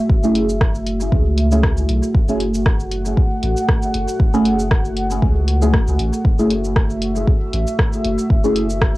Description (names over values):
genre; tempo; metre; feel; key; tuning
dub techno; 117 BPM; 4/4; swing 55% on 16ths; F# minor; A4 = 444 Hz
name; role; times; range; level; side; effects
dark analog pad; sustained chords; 0.0-9.0 s; A3 to F#5; -22 LUFS; equal; chorus, sidechain pumping
soft dub sub bass; bass; 0.1-9.0 s; F#1 to C#2; -21 LUFS; equal; transformer saturation, sidechain pumping
electronic kick drum; drums; 0.1-8.9 s; none; -16 LUFS; equal; cassette tape
deep mellow chord stab; stabs; 0.2-8.7 s; A3 to G#4; -20 LUFS; equal; chorus, phaser, sidechain pumping, dub echo
deep house drum kit; drums; 0.2-9.0 s; cabasa, hi-hat, rim click; -25 LUFS; equal; cassette tape
room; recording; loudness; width
moderate small room reverb, RT60 0.5 s; home recording on cassette; -15 LUFS; side -18 dB against mid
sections
0.0-9.0 A section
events
none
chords
0.0 F#m7